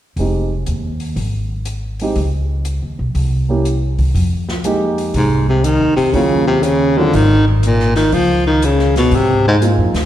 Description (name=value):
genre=jazz, small-group swing and bop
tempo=121 BPM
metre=4/4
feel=swing 68% on 8ths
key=F minor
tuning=A4 = 440 Hz
part: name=dark grand piano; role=accompaniment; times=0.2-9.9 s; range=Gb3 to G4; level=-20 LUFS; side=right 3 dB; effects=slapback echo
part: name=upright bass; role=bass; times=0.2-10.1 s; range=F1 to Ab2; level=-17 LUFS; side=equal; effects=none
part: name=open jazz drum kit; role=drums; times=0.2-10.0 s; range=hi-hat, kick drum, snare drum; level=-24 LUFS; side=equal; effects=none
part: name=warm baritone saxophone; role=melody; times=5.2-9.6 s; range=Gb2 to F3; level=-13 LUFS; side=left 1 dB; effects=slapback echo
room=small room ambience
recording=live gig heard through the venue's PA, recital hall reverb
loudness=-13 LUFS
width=side -12 dB against mid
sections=0.2-4.2 A section; 4.2-10.1 B section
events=none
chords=0.2 Fm9; 1.2 Ab; 2.2 Dbsus2; 3.2 C7b9; 4.2 Fm11; 6.1 Ebm9; 7.1 Ebsus4/Ab; 8.1 Db6